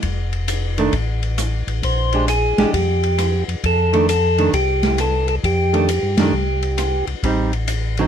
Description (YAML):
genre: soul jazz organ trio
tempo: 133 BPM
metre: 4/4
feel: swing 66% on 8ths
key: F mixolydian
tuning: A4 = 441 Hz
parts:
  - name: mellow tonewheel organ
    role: bass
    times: 0.0-8.1 s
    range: F1 to G2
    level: -20 LUFS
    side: left 1 dB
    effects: chorus vibrato, slow rotary speaker
  - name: open jazz drum kit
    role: drums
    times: 0.0-8.0 s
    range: hi-hat, kick drum, ride cymbal, rim click, snare drum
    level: -24 LUFS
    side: left 1 dB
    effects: none
  - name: archtop guitar, miked and amplified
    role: accompaniment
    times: 0.8-8.1 s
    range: D3 to G4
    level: -19 LUFS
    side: right 4 dB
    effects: none
  - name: percussive tonewheel organ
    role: melody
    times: 1.8-7.1 s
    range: G4 to C5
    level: -19 LUFS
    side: right 1 dB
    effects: slow rotary speaker
room: little or no reverb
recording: none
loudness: -16 LUFS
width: side -8 dB against mid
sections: 0.0-8.1 A section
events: band accent 6.1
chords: 0.0 F; 1.8 Bb13; 3.6 F13; 7.2 Am7b5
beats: | 0.04 0.49 0.94 1.39 | 1.83 2.28 2.73 3.18 | 3.63 4.08 4.53 4.98 | 5.43 5.88 6.33 6.78 | 7.23 7.68